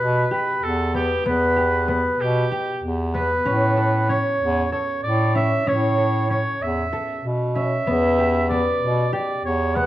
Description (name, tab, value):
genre	contemporary instrumental, contemporary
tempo	190 BPM (eighths)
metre	7/8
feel	straight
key	E dorian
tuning	A4 = 440 Hz
part	warm oboe	melody	0.0-9.9 s	G4 to F#5	-24 LUFS	right 2 dB	none
part	concert harp	arpeggios	0.0-9.9 s	B3 to A4	-24 LUFS	left 2 dB	none
part	clear bass clarinet	bass	0.0-9.9 s	E2 to B2	-22 LUFS	equal	none
room	moderate recital hall reverb, RT60 1.4 s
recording	dark, warm production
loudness	-19 LUFS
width	side -14 dB against mid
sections	0.0-9.9 A section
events	none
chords	0.0 Em